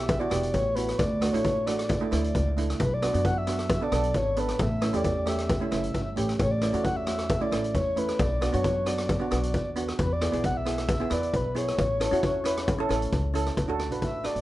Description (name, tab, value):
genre	calypso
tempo	134 BPM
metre	4/4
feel	straight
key	D major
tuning	A4 = 440 Hz
part	breathy flute-like synth lead	melody	0.0-14.4 s	B4 to F#5	-30 LUFS	left 1 dB	chorus, plate reverb, tape echo
part	steel pan	accompaniment	0.0-14.4 s	A3 to B4	-30 LUFS	right 3 dB	plate reverb
part	upright bass	bass	0.0-14.4 s	E1 to F#2	-30 LUFS	equal	none
part	street-band drum kit	drums	0.1-14.4 s	hi-hat, kick drum, rim click	-30 LUFS	equal	none
part	cowbell	percussion	0.1-14.1 s	none	-34 LUFS	left 1 dB	none
room	moderate small room ambience, RT60 0.5 s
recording	rough home demo mix, nothing above 10.8 kHz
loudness	-24 LUFS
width	side -16 dB against mid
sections	0.0-13.6 A section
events	none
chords	0.0 Em; 1.0 D; 2.8 Bm7; 4.6 A; 8.2 Bm; 10.0 E; 11.8 A; 13.6 D